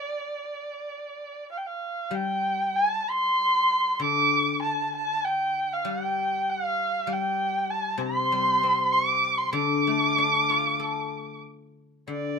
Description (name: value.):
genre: chinese traditional.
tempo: 97 BPM.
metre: 4/4.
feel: rubato.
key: D yu mode.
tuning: A4 = 435 Hz.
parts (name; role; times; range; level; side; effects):
warm erhu; melody; 0.0-12.4 s; D5 to D6; -24 LUFS; right 1 dB; none.
guzheng; accompaniment; 2.1-12.4 s; C3 to A4; -31 LUFS; left 6 dB; none.
room: light reverb.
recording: minimal, uncompressed stereo recording.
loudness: -23 LUFS.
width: side -5 dB against mid.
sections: 0.0-2.1 A section; 2.1-12.1 B section.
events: none.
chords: none.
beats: 0.20 0.83 1.49 | 2.13 2.76 3.39 4.01 | 4.63 5.25 5.86 6.47 | 7.09 7.70 8.31 8.93 | 9.55 10.17 10.80 11.44 | 12.09.